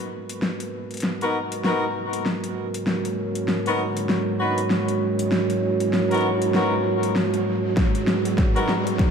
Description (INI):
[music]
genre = glitch hop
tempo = 98 BPM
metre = 4/4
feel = swing 59% on 16ths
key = G# minor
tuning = A4 = 441 Hz
[part]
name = dark analog pad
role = sustained chords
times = 0.0-9.1 s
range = G#3 to C#5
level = -24 LUFS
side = right 2 dB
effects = chorus, sidechain pumping
[part]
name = riser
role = sound effects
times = 0.1-9.1 s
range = none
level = -35 LUFS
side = right 2 dB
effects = none
[part]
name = dubstep drum kit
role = drums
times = 0.3-9.1 s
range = hi-hat, snare drum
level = -27 LUFS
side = left 1 dB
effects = studio reverb
[part]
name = clear horn section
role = stabs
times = 1.2-8.7 s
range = B3 to B4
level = -26 LUFS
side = left 2 dB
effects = sidechain pumping, ping-pong delay
[part]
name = electronic kick drum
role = drums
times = 7.8-9.1 s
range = none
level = -20 LUFS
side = equal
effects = studio reverb
[sound]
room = wet plate reverb, RT60 2.4 s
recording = dreamy mix soaked in reverb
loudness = -20 LUFS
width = side -6 dB against mid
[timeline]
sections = 0.0-9.1 A section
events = build-up 0.0-9.1; drum fill 0.0-9.1; filter sweep on analog synth pad 0.0-9.1; riser 0.1-9.1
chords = 0.0 G#m9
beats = | 0.42 1.03 1.65 2.26 | 2.87 3.48 4.10 4.71 | 5.32 5.93 6.54 7.16 | 7.77 8.38 8.99